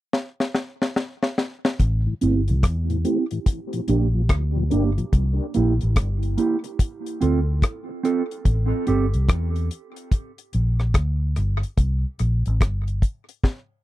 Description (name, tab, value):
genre	dub reggae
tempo	72 BPM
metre	4/4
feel	swing 64% on 16ths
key	A phrygian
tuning	A4 = 439 Hz
part	deep reggae drum kit	drums	0.1-13.7 s	hi-hat, kick drum, rim click, snare drum	-20 LUFS	left 1 dB	none
part	vintage muted fingered electric bass	bass	1.8-13.0 s	G1 to E2	-21 LUFS	equal	none
part	mellow tonewheel organ	accompaniment	2.1-5.1 s	A2 to G4	-29 LUFS	left 3 dB	chorus vibrato, slow rotary speaker, low-pass filter, tape echo
part	mellow electric guitar	accompaniment	2.2-9.1 s	Bb3 to A4	-25 LUFS	right 5 dB	spring reverb, low-pass filter, tape echo
room	little or no reverb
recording	dry, close 1970s-style studio recording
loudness	-20 LUFS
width	side -15 dB against mid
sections	0.0-1.8 A section; 1.8-13.8 B section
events	drum fill 0.1-1.8, 13.4-13.8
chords	0.0 N.C.; 1.8 Am7; 3.5 Bb6; 5.1 C7; 6.8 Dm7; 8.4 Am7; 10.1 Bb6; 11.8 C5